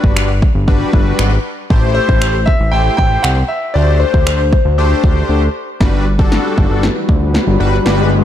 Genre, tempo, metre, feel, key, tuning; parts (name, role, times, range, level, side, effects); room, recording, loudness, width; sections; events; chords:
dance-pop; 117 BPM; 4/4; straight; G major; A4 = 439 Hz
clear grand piano; melody; 0.0-5.5 s; C5 to G5; -18 LUFS; left 2 dB; ping-pong delay
big bright polysynth; accompaniment; 0.0-8.1 s; G3 to C5; -19 LUFS; left 2 dB; chorus, sidechain pumping
fat analog bass; bass; 0.0-8.2 s; G1 to D2; -14 LUFS; equal; sidechain pumping
deep house drum kit; drums; 0.0-8.0 s; finger snaps, kick drum, snare drum; -14 LUFS; equal; overdrive
warm analog pad; sustained chords; 5.8-8.2 s; G3 to B4; -22 LUFS; left 2 dB; chorus, tremolo, sidechain pumping
riser; sound effects; 6.5-8.2 s; -21 LUFS; left 3 dB
light reverb; dark, warm production; -11 LUFS; side -11 dB against mid
0.0-5.8 A section; 5.8-8.2 B section
break 5.3-5.8; build-up 5.8-8.2; drum fill 5.8-8.2; riser 6.5-8.2
0.0 Gmaj7; 1.7 Am7; 3.8 D7sus4; 5.8 Gmaj7